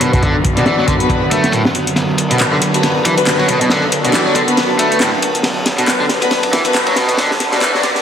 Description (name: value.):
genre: breakbeat, breaks.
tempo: 138 BPM.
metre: 4/4.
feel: swing 58% on 16ths.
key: B minor.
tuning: A4 = 442 Hz.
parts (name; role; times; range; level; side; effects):
phased analog pad; sustained chords; 0.0-8.0 s; D3 to A4; -21 LUFS; right 2 dB; phaser, chorus, sidechain pumping.
overdriven semi-hollow guitar; riff; 0.0-7.9 s; A2 to A3; -17 LUFS; equal; dub echo.
detuned saw bass; bass; 0.0-8.0 s; F#1 to B1; -28 LUFS; equal; none.
crunchy breakbeat drum kit; drums; 0.0-8.0 s; kick drum, ride cymbal, snare drum; -18 LUFS; equal; low-pass filter on kick, low-pass filter on cymbals, low-pass filter on snare, low-pass filter on room.
punchy analog drum machine; drums; 0.0-8.0 s; handclaps, hi-hat; -20 LUFS; left 1 dB; none.
dark studio string section; stabs; 0.6-8.0 s; B3 to D5; -18 LUFS; left 2 dB; low-pass filter, dub echo.
room: wet plate reverb, RT60 1.7 s, small room ambience.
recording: dense, heavily limited modern master, high-pass filter.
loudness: -12 LUFS.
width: side -8 dB against mid.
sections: 0.0-8.0 A section.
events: build-up 0.0-8.0; filter sweep on drum 0.0-8.0; filter sweep 0.0-8.0; drum fill 2.0-8.0.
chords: 0.0 Bm.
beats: | 0.23 0.66 1.10 1.53 | 1.97 2.40 2.84 3.27 | 3.71 4.14 4.58 5.01 | 5.45 5.88 6.31 6.75 | 7.18 7.62.